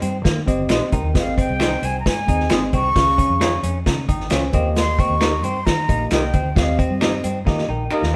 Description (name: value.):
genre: uptempo 1960s-style soul.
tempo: 133 BPM.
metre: 4/4.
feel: straight.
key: Ab major.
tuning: A4 = 436 Hz.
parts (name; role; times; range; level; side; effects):
breathy concert flute; melody; 0.0-8.2 s; Eb5 to Db6; -25 LUFS; equal; none.
direct-recorded clean electric guitar; riff; 0.0-7.8 s; Bb3 to Eb4; -32 LUFS; equal; none.
vintage muted fingered electric bass; bass; 0.0-8.2 s; G1 to Eb3; -26 LUFS; equal; none.
vintage drum kit; drums; 0.0-8.1 s; hi-hat, kick drum, snare drum; -23 LUFS; equal; none.
tine electric piano; accompaniment; 0.5-8.1 s; Bb3 to Eb6; -28 LUFS; equal; none.
electric guitar through a small old amp; stabs; 0.7-8.0 s; C4 to Eb5; -28 LUFS; equal; none.
finger snaps; percussion; 0.7-8.0 s; none; -35 LUFS; equal; none.
room: moderate stone room reverb, RT60 1.4 s.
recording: band playing live in one room.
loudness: -19 LUFS.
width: mono.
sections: 0.0-8.2 A section.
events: drum fill 7.5-8.2.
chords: 0.0 Cm; 1.2 Ab; 3.0 Db; 4.5 Eb; 6.6 Cm/Eb; 7.5 Eb.